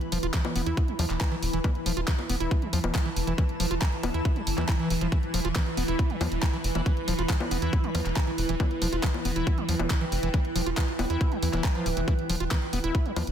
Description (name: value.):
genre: psychedelic trance.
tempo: 138 BPM.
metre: 4/4.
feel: straight.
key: E phrygian.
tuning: A4 = 440 Hz.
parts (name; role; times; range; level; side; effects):
evolving wavetable pad; sustained chords; 0.0-13.3 s; E3; -34 LUFS; right 2 dB; phaser, built-in reverb, sidechain pumping.
garage drum kit; drums; 0.0-13.3 s; bongos, handclaps, hi-hat; -33 LUFS; left 1 dB; overdrive, studio reverb.
granular cloud pad; texture; 0.0-13.3 s; E4 to B5; -35 LUFS; equal; built-in reverb, sidechain pumping.
overdriven acid bass; riff; 0.1-13.2 s; E3 to F4; -33 LUFS; equal; auto-pan, sidechain pumping, dub echo.
tight sequencer bass; bass; 0.1-13.3 s; D1 to E2; -29 LUFS; equal; none.
electronic kick drum; drums; 0.3-13.0 s; none; -26 LUFS; equal; overdrive, studio reverb.
room: digital ambience.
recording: dense, heavily limited modern master.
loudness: -24 LUFS.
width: side -9 dB against mid.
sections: 0.0-13.3 A section.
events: none.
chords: 0.0 E5.